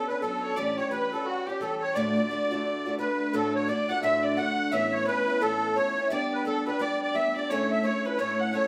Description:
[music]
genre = celtic folk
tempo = 173 BPM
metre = 4/4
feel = swing 61% on 8ths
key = D major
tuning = A4 = 438 Hz
[part]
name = musette accordion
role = melody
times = 0.0-8.7 s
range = F#4 to F#5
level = -30 LUFS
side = equal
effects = none
[part]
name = warm fiddle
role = second line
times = 0.0-8.7 s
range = F#4 to F#5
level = -35 LUFS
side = equal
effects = none
[part]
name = picked old ladder-braced acoustic guitar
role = accompaniment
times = 0.0-8.7 s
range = D2 to A4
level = -32 LUFS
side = equal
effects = none
[sound]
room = wet large studio reverb, RT60 1.0 s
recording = band playing live in one room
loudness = -27 LUFS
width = mono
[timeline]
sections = 0.0-3.3 A section; 3.3-8.7 B section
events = none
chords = 0.0 Bmadd9; 0.6 A7; 2.0 D; 4.7 Aadd9; 6.1 G; 7.5 A

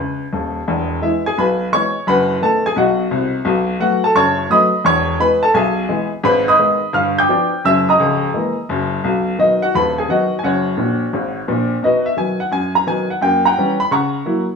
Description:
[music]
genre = jazz, stride piano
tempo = 172 BPM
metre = 4/4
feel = swing 66% on 8ths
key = E major, B major from 6.2 s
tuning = A4 = 442 Hz
[part]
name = clear upright piano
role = solo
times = 0.0-14.5 s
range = C#1 to G6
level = -14 LUFS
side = left 1 dB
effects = none
[sound]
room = wet studio reverb, RT60 0.8 s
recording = band playing live in one room, small room ambience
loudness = -14 LUFS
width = side -5 dB against mid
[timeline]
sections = 0.7-11.8 A section; 11.8-14.6 B section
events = upright piano fill 0.0-0.7, 10.8-11.8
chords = 0.0 B; 0.7 E; 2.1 B7/F#; 3.5 B7; 4.8 E; 6.2 G#m; 6.9 G7; 7.6 F#13; 9.0 B; 9.7 B/D#; 10.4 F#; 11.8 B; 13.2 F#7b9; 13.9 F#7/C#

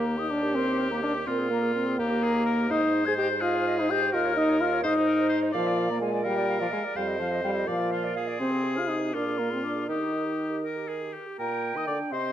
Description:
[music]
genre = quick classical-period movement for wind quintet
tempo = 84 BPM (dotted quarters)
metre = 6/8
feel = straight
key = Eb major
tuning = A4 = 441 Hz
[part]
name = mellow silver concert flute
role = melody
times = 0.0-12.3 s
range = F5 to Ab6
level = -32 LUFS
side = left 9 dB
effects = none
[part]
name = bright oboe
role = second line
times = 0.0-12.3 s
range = F4 to Eb5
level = -33 LUFS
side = left 4 dB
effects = none
[part]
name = clear French horn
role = accompaniment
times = 0.0-12.3 s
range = F3 to Ab4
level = -27 LUFS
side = equal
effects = none
[part]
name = warm clarinet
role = accompaniment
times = 0.0-12.3 s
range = G4 to G5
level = -34 LUFS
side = right 8 dB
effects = none
[part]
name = mellow bassoon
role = bass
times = 0.0-12.3 s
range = Eb2 to Eb3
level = -32 LUFS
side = right 3 dB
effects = none
[sound]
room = moderate recital hall reverb, RT60 1.5 s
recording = close, detailed microphones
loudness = -24 LUFS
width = side -11 dB against mid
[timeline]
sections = 0.0-11.4 A section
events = none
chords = 0.0 Eb; 1.3 Bb5; 2.0 Eb; 2.7 Ab; 4.1 Eb5; 4.8 Ab; 5.5 Bb; 7.0 F5; 7.7 Bb; 8.4 Ab/C; 9.1 Bb5; 9.9 Eb; 11.4 Eb/Bb

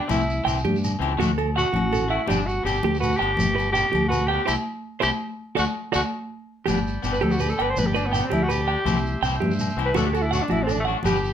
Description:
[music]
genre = highlife guitar band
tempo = 110 BPM (dotted quarters)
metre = 12/8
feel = straight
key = G major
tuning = A4 = 438 Hz
[part]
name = growling alto saxophone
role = melody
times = 0.0-11.3 s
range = A3 to C5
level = -25 LUFS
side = equal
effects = none
[part]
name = electric guitar at the edge of break-up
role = accompaniment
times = 0.0-11.2 s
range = E3 to G4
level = -30 LUFS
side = left 7 dB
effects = none
[part]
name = fingered electric bass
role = bass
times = 0.1-11.3 s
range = G1 to G2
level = -27 LUFS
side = equal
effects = none
[part]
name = agogo bells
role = percussion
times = 0.1-11.2 s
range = none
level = -33 LUFS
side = left 4 dB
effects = none
[part]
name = congas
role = percussion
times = 0.1-11.1 s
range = none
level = -28 LUFS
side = left 2 dB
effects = none
[part]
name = shekere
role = percussion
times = 0.1-11.3 s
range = none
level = -33 LUFS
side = right 2 dB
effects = none
[part]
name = clean electric guitar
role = arpeggios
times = 0.4-11.2 s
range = E4 to G5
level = -27 LUFS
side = right 8 dB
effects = slapback echo
[part]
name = combo organ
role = sustained chords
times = 6.7-11.3 s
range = D5 to D6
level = -36 LUFS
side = right 1 dB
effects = spring reverb
[sound]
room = moderate studio reverb, RT60 0.6 s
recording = none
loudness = -20 LUFS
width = side -9 dB against mid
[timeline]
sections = 0.0-6.7 A section; 6.7-11.3 B section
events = band accent 4.5-6.7; alto saxophone solo 6.7-11.3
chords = 0.1 C; 1.2 D; 2.3 G; 4.5 C; 5.6 D; 6.7 G; 8.9 C; 10.0 D

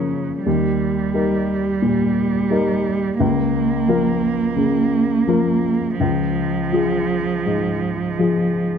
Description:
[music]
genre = neoclassical piano and strings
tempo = 81-89 BPM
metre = 4/4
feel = rubato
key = Bb dorian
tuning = A4 = 440 Hz
[part]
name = clear cello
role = second line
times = 0.0-8.7 s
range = Db3 to Bb3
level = -21 LUFS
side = right 5 dB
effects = none
[part]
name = dark upright piano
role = accompaniment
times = 0.0-8.8 s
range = Db2 to Bb4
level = -19 LUFS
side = left 3 dB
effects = none
[sound]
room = moderate recital hall reverb, RT60 1.3 s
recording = close, detailed microphones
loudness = -17 LUFS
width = side -7 dB against mid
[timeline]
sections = 0.0-8.8 A section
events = none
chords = 0.5 Eb; 3.2 Bbm/Db; 6.0 Db

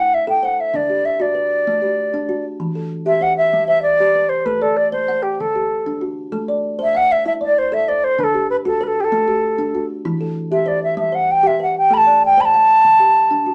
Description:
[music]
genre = southern african traditional, mbira-style interlocking cycle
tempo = 129 BPM (dotted quarters)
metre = 12/8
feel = straight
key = A dorian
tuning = A4 = 440 Hz
[part]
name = bright wooden flute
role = melody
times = 0.0-13.5 s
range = G4 to B5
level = -17 LUFS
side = equal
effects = none
[part]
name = kalimba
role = arpeggios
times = 0.0-13.5 s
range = D3 to F#5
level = -26 LUFS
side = equal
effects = none
[sound]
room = moderate small room reverb, RT60 0.5 s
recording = none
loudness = -17 LUFS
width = mono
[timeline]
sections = 0.0-6.3 A section; 6.3-13.5 A section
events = none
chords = 0.0 Am; 0.7 D; 2.6 Em; 3.5 G; 4.5 Am; 5.4 D; 6.3 Am; 8.2 D; 10.0 Em; 11.0 G; 11.9 Am; 12.8 D

